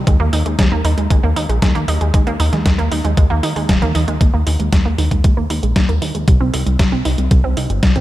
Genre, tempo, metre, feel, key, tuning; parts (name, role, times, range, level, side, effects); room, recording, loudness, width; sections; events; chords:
italo disco; 116 BPM; 4/4; straight; A4 = 438 Hz
chorused synth bass; bass; 0.0-8.0 s; Eb1 to Eb2; -17 LUFS; equal
wide unison pluck; arpeggios; 0.1-8.0 s; G3 to Eb4; -21 LUFS; right 3 dB; analog delay
detuned 8-bit digital drum machine; drums; 0.1-8.0 s; congas, hi-hat, snare drum; -21 LUFS; left 1 dB; studio reverb
electronic kick drum; drums; 0.1-8.0 s; -14 LUFS; equal; studio reverb
light reverb; -13 LUFS; side -15 dB against mid
0.0-4.2 A section; 4.2-8.0 B section
0.1 Ebsus4; 6.3 Cm